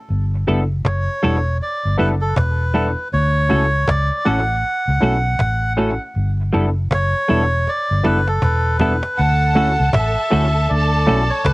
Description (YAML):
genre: lovers rock reggae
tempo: 79 BPM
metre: 4/4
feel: swing 60% on 16ths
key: D major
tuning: A4 = 440 Hz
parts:
  - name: vintage muted fingered electric bass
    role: bass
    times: 0.1-11.5 s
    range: E1 to D2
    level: -18 LUFS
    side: equal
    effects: none
  - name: cajon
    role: drums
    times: 0.1-11.5 s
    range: none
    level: -22 LUFS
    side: equal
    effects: cassette tape, analog delay
  - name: barky tine electric piano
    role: accompaniment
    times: 0.5-11.2 s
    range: B3 to A4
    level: -23 LUFS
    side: left 2 dB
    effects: overdrive, cassette tape
  - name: semi-hollow electric guitar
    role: stabs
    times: 0.5-11.2 s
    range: G3 to A4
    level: -18 LUFS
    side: right 1 dB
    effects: analog chorus, cassette tape
  - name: melodica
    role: melody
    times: 0.9-11.5 s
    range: A4 to F#5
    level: -20 LUFS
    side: right 1 dB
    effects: tape echo
  - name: clear studio string section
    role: second line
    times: 9.2-11.5 s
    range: A4 to A5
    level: -24 LUFS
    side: equal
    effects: cassette tape
room: little or no reverb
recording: home recording on cassette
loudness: -15 LUFS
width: side -22 dB against mid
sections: 0.0-9.2 A section; 9.2-11.5 B section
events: drum fill 7.7-9.2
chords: 0.1 G69; 3.1 Dmaj7 (rootless); 6.2 G69; 9.2 Dmaj7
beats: | 0.09 0.85 1.61 2.36 | 3.12 3.88 4.64 5.39 | 6.15 6.91 7.67 8.43 | 9.18 9.94 10.70 11.45